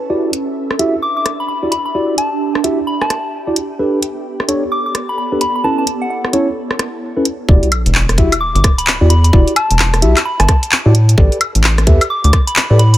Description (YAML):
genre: UK garage, two-step garage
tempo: 130 BPM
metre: 4/4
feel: swing 62% on 16ths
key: E dorian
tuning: A4 = 439 Hz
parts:
  - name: ethereal airy pad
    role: texture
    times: 0.0-7.5 s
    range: B3 to E5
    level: -23 LUFS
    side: right 3 dB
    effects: ensemble chorus, built-in reverb, phaser, sidechain pumping
  - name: mellow tine electric piano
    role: stabs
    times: 0.1-12.8 s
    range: C#4 to E5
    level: -18 LUFS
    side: equal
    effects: lush chorus, dub echo
  - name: garage drum kit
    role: drums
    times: 0.3-13.0 s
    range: handclaps, hi-hat, rim click, woodblock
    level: -16 LUFS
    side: equal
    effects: none
  - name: soft synth bell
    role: melody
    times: 1.0-13.0 s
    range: F#5 to D6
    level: -19 LUFS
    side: left 1 dB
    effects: chorus, phaser, dub echo
  - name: rubbery square bass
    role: bass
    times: 7.5-13.0 s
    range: E1 to A2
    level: -11 LUFS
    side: equal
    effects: none
  - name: electronic kick drum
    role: drums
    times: 7.5-12.4 s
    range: none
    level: -11 LUFS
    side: equal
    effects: none
  - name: sub drop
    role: sound effects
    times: 7.5-9.3 s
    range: none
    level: -20 LUFS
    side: equal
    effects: none
room: digital ambience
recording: none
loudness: -12 LUFS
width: side -14 dB against mid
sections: 0.0-7.5 A section; 7.5-13.0 B section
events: drop 7.5-13.0; impact 7.5-9.3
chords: 0.1 Em9; 3.6 A9sus4; 5.6 B9sus4; 7.5 Em9; 10.9 A9sus4